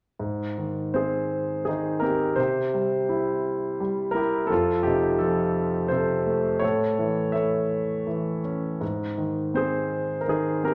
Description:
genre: classical, lyrical solo piano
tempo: 83 BPM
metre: 3/4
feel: rubato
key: Ab major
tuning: A4 = 440 Hz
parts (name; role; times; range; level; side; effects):
- warm concert grand piano; solo; 0.2-10.7 s; F2 to E5; -25 LUFS; equal; none
room: wet recital hall reverb, RT60 1.4 s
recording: none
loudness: -26 LUFS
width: mono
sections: 0.2-10.7 A section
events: none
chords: 0.2 Ab; 2.4 C; 4.5 F; 6.6 A; 8.8 Ab

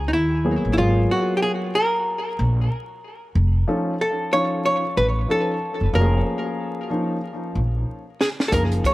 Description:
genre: hip hop, jazz-hop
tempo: 93 BPM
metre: 4/4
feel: swing 60% on 16ths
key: unclear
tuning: A4 = 440 Hz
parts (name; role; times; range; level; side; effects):
- archtop guitar, miked and amplified; melody; 0.0-8.9 s; D#4 to C#5; -22 LUFS; equal; tape echo
- upright bass; bass; 0.0-8.8 s; F1 to D#2; -20 LUFS; equal; none
- dark grand piano; accompaniment; 0.4-8.9 s; F3 to A4; -25 LUFS; left 1 dB; tape echo
- compact cocktail drum kit; drums; 8.2-8.9 s; hi-hat, kick drum, snare drum; -23 LUFS; equal; none
room: light reverb, small room ambience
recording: echo-heavy mix, vinyl crackle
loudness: -19 LUFS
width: side -18 dB against mid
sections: 0.0-8.9 A section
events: drum fill 7.2-8.5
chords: 0.1 D#5; 0.8 G#m9; 3.4 Faug7; 5.9 A#m7/E#

